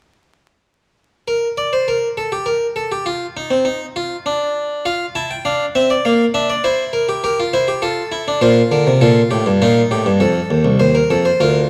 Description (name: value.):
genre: classical, baroque-style 4-part fugue for harpsichord.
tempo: 101 BPM.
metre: 3/4.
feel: straight.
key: unclear.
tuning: A4 = 440 Hz.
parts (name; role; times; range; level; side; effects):
harpsichord; solo; 1.3-11.7 s; C2 to A5; -17 LUFS; equal; none.
room: moderate recital hall reverb, RT60 1.6 s.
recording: close, detailed microphones, vinyl crackle.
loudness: -17 LUFS.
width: mono.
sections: 1.3-11.7 A section.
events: none.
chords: 1.3 N.C.; 4.9 F; 6.0 Bb; 6.6 C7/E; 7.8 F; 8.4 Bb; 9.6 Ebadd9; 10.2 F7.